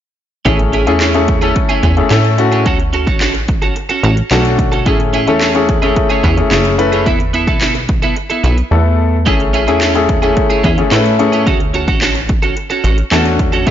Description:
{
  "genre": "dance-pop",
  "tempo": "109 BPM",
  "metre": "4/4",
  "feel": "straight",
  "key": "A major",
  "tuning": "A4 = 440 Hz",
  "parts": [
    { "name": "warm baby grand piano", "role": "accompaniment", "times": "0.5-13.7 s", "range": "A3 to B4", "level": "-14 LUFS", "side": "left 3 dB", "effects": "sidechain pumping" },
    { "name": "twelve-string electric guitar", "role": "riff", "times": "0.5-13.7 s", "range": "B3 to A4", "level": "-18 LUFS", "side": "right 4 dB", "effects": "analog chorus" },
    { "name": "plucky analog bass", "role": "bass", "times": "0.5-13.7 s", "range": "E1 to A2", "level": "-16 LUFS", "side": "equal", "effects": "sidechain pumping" },
    { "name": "house drum kit", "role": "drums", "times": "0.5-13.7 s", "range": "handclaps, hi-hat, kick drum, snare drum", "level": "-16 LUFS", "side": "equal", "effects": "overdrive" }
  ],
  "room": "light reverb",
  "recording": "blown-out, overdriven recording, overdrive, nothing above 7.5 kHz",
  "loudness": "-11 LUFS",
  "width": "side -10 dB against mid",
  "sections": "0.5-13.7 A section",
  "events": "silent gap 8.7-9.3",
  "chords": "0.5 Amaj7; 2.7 Dmaj7; 4.9 Amaj7; 7.1 Esus4; 9.3 Amaj7; 11.5 Dmaj7"
}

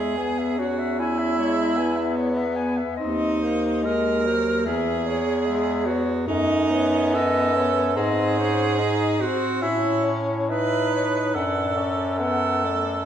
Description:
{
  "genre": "classical, lyrical piece for single-reed quartet",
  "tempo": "64-76 BPM",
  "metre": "4/4",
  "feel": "rubato",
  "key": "C# minor",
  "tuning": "A4 = 441 Hz",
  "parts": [
    { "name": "mellow clarinet", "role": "melody", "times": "0.0-13.0 s", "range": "B#4 to G#5", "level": "-29 LUFS", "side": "left 6 dB", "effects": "none" },
    { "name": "clear alto saxophone", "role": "second line", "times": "0.0-13.1 s", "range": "D#4 to B4", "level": "-24 LUFS", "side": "right 4 dB", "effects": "none" },
    { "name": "mellow tenor saxophone", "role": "accompaniment", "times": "0.0-13.0 s", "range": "E3 to D#4", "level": "-28 LUFS", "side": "left 3 dB", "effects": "none" },
    { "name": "clear bass clarinet", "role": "bass", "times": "0.0-13.1 s", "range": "D#2 to A2", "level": "-25 LUFS", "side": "equal", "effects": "none" }
  ],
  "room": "wet recital hall reverb, RT60 1.8 s",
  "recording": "recorded in a church or concert hall",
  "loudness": "-20 LUFS",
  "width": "side -9 dB against mid",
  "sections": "0.0-13.1 A section",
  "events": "none",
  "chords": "0.0 C#m/E; 3.0 D#m6; 4.7 C#m/E; 6.3 D#m7b5/F#; 8.0 G#; 9.6 A; 11.4 D/F#"
}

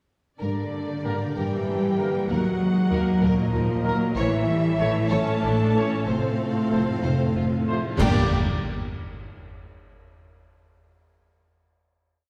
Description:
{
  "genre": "cinematic, epic orchestral film score",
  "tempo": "63 BPM (dotted quarters)",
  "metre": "6/8",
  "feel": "straight",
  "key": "G dorian",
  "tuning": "A4 = 442 Hz",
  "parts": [
    { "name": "warm symphonic violin section", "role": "melody", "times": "0.4-8.3 s", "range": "D4 to D5", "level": "-38 LUFS", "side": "equal", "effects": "none" },
    { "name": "warm symphonic violin section", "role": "second line", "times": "0.4-8.3 s", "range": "A4 to A5", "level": "-36 LUFS", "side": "equal", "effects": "none" },
    { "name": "rich symphonic string section", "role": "sustained chords", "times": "0.4-8.3 s", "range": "A3 to F5", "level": "-38 LUFS", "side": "equal", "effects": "none" },
    { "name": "warm French horn section", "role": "sustained chords", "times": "0.4-8.3 s", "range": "G3 to A4", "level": "-33 LUFS", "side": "equal", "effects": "none" },
    { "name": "rich studio cello section", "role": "bass", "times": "0.4-8.3 s", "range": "A2 to A3", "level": "-28 LUFS", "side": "equal", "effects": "none" },
    { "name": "warm symphonic double bass section", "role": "bass", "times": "0.4-8.3 s", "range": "F1 to G2", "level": "-30 LUFS", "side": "equal", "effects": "none" },
    { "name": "clear trombone section", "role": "sustained chords", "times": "1.0-8.3 s", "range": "D3 to Bb3", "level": "-38 LUFS", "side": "equal", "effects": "none" },
    { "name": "clear trumpet section", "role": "stabs", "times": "1.0-8.3 s", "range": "Bb4 to D5", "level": "-37 LUFS", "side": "equal", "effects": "none" },
    { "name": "warm symphonic viola section", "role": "accompaniment", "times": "1.4-8.3 s", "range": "E3 to G4", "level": "-34 LUFS", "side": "equal", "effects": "none" },
    { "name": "cymbal swell, clash cymbals and concert bass drum", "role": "percussion", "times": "4.2-9.2 s", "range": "none", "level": "-33 LUFS", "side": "equal", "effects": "none" }
  ],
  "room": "wet scoring stage reverb, RT60 1.9 s",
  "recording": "heard from further back in the room",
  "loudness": "-24 LUFS",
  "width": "mono",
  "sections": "0.4-8.0 theme; 8.0-9.9 final chord",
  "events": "band accent 8.0-8.6",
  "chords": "0.4 Gm; 2.3 Ebm; 4.2 A; 6.1 F; 8.0 Gm"
}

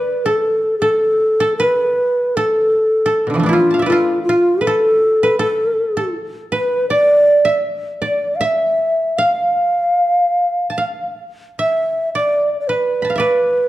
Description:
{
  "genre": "japanese traditional, Japanese chamber music",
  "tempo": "78 BPM",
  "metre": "4/4",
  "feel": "uneven beats, rubato",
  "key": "D kumoi",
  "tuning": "A4 = 439 Hz",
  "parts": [
    { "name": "mellow hollow long shakuhachi", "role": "melody", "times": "0.0-13.7 s", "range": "F4 to F5", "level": "-14 LUFS", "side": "equal", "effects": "none" },
    { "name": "koto", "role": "second line", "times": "0.0-13.7 s", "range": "B2 to B5", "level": "-21 LUFS", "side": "right 2 dB", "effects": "none" }
  ],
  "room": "moderate recital hall reverb, RT60 1.7 s",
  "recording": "dark, warm production",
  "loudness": "-14 LUFS",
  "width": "side -15 dB against mid",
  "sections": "0.0-13.7 A section",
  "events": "none",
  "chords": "none"
}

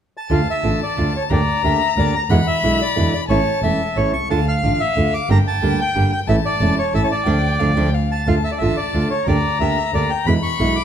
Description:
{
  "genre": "tango",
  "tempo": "181 BPM",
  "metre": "3/4",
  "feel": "rubato",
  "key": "D harmonic minor",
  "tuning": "A4 = 438 Hz",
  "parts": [
    { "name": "bandoneon", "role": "melody", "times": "0.2-10.8 s", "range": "C#5 to D6", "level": "-22 LUFS", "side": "right 1 dB", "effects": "none" },
    { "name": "warm violin", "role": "second line", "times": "0.3-10.8 s", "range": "F5 to B5", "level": "-24 LUFS", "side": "left 9 dB", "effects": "none" },
    { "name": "flamenco guitar", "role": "accompaniment", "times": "0.3-10.8 s", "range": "B2 to G4", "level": "-22 LUFS", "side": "right 3 dB", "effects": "none" },
    { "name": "rich double bass", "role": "bass", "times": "0.3-10.7 s", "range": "E1 to E2", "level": "-20 LUFS", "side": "right 1 dB", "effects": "none" }
  ],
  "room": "moderate large studio reverb, RT60 1.3 s",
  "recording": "close, detailed microphones",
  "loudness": "-16 LUFS",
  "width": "side -9 dB against mid",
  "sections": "0.3-8.3 A section; 8.3-10.8 A section",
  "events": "band accent 7.3-8.3",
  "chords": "0.3 Dm; 1.3 Gm/D; 2.3 E7; 3.3 A; 4.3 Dm; 5.3 Gm; 6.3 A; 7.3 Dm; 9.3 Gm/D; 10.3 E7"
}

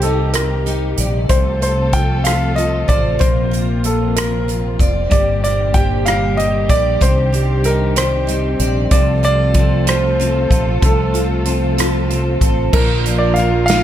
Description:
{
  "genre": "six-eight pop ballad",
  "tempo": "63 BPM (dotted quarters)",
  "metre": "6/8",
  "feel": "straight",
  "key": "Bb major",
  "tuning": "A4 = 442 Hz",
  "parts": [
    { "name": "warm baby grand piano", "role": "melody", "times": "0.0-13.8 s", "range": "A4 to G5", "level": "-20 LUFS", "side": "equal", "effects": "none" },
    { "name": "picked steel-string acoustic guitar", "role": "accompaniment", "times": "0.0-13.8 s", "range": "C3 to D5", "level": "-22 LUFS", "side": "equal", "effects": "double-tracked left and right" },
    { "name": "muted studio string section", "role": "sustained chords", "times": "0.0-13.8 s", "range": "Bb2 to Bb4", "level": "-24 LUFS", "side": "equal", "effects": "none" },
    { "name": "mellow fretless electric bass", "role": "bass", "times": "0.0-13.8 s", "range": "F1 to C2", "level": "-18 LUFS", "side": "equal", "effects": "none" },
    { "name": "natural country drum kit", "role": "drums", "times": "0.0-13.8 s", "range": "crash cymbal, hi-hat, kick drum, rim click, snare drum", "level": "-18 LUFS", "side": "equal", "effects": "none" },
    { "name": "twelve-string electric guitar", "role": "arpeggios", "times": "5.1-13.8 s", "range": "G2 to Bb4", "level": "-24 LUFS", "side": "right 1 dB", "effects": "tape echo" },
    { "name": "dark French horn section", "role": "second line", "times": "12.7-13.8 s", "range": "F4", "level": "-22 LUFS", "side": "right 6 dB", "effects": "none" }
  ],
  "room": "light reverb, small room reverb",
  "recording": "none",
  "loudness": "-13 LUFS",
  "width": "side -11 dB against mid",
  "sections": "0.0-12.7 A section; 12.7-13.8 B section",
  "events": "none",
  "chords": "0.0 Cmadd9; 1.3 F/C; 3.2 Bbadd9; 5.1 Gm; 7.0 Cmadd9; 8.9 F; 12.7 Bb"
}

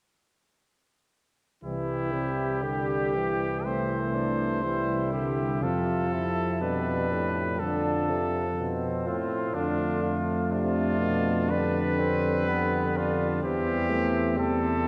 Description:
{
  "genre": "classical, brass quintet",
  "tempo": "61 BPM",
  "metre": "4/4",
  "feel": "rubato",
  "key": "C major",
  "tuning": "A4 = 444 Hz",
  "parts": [
    { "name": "clear trumpet", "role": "melody", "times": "1.6-14.9 s", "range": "D4 to C5", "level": "-34 LUFS", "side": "equal", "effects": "none" },
    { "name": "warm French horn", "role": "accompaniment", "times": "1.6-14.9 s", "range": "F3 to A3", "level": "-35 LUFS", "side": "equal", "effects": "none" },
    { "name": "warm euphonium", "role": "accompaniment", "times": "1.6-14.9 s", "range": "A2 to E3", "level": "-34 LUFS", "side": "equal", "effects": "none" },
    { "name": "mellow tuba", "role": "bass", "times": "1.6-14.9 s", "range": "C2 to F2", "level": "-34 LUFS", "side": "equal", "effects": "none" },
    { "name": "warm flugelhorn", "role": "second line", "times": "1.7-14.9 s", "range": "B3 to G4", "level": "-35 LUFS", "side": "equal", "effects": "none" }
  ],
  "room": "wet church reverb, RT60 3.6 s",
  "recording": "none",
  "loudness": "-27 LUFS",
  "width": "mono",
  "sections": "1.6-14.9 A section",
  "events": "none",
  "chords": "1.6 C; 5.6 F; 13.4 C/E"
}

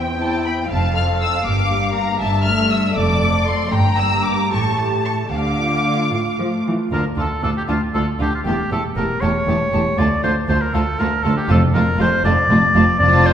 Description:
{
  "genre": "quick classical-period movement for symphony orchestra",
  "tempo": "79 BPM (dotted quarters)",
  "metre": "6/8",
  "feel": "rubato",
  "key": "D minor",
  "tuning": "A4 = 440 Hz",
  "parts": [
    { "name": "muted studio violin section", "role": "melody", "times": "0.0-13.3 s", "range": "G5 to F6", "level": "-24 LUFS", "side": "left 3 dB", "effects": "none" },
    { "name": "muted chamber violin section", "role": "second line", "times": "0.0-13.3 s", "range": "F4 to Bb5", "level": "-26 LUFS", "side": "left 2 dB", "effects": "none" },
    { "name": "muted chamber viola section", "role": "accompaniment", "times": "0.0-13.3 s", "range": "A3 to A4", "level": "-23 LUFS", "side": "right 1 dB", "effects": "none" },
    { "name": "muted chamber cello section", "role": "bass", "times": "0.0-13.3 s", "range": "D2 to F3", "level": "-23 LUFS", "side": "right 1 dB", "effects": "none" },
    { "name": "muted symphonic double bass section", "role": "bass", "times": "0.7-13.3 s", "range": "E1 to D2", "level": "-22 LUFS", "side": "right 1 dB", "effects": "none" },
    { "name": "clear oboe", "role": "second line", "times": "6.9-13.3 s", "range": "F4 to D5", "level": "-19 LUFS", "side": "equal", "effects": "none" },
    { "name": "timpani", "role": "percussion", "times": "11.5-13.3 s", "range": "F2", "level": "-19 LUFS", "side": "left 1 dB", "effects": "none" }
  ],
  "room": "wet recital hall reverb, RT60 1.5 s",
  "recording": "recorded in a church or concert hall",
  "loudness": "-16 LUFS",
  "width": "side -9 dB against mid",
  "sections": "0.0-6.9 A section; 6.9-13.3 B section",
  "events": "none",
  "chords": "0.0 C/E; 0.7 F; 1.4 Gm; 2.2 A5/G; 3.0 Dm/F; 3.7 Gm; 4.5 A7; 5.3 Dm; 8.5 A7/E; 10.0 Dm; 11.5 Dm/F"
}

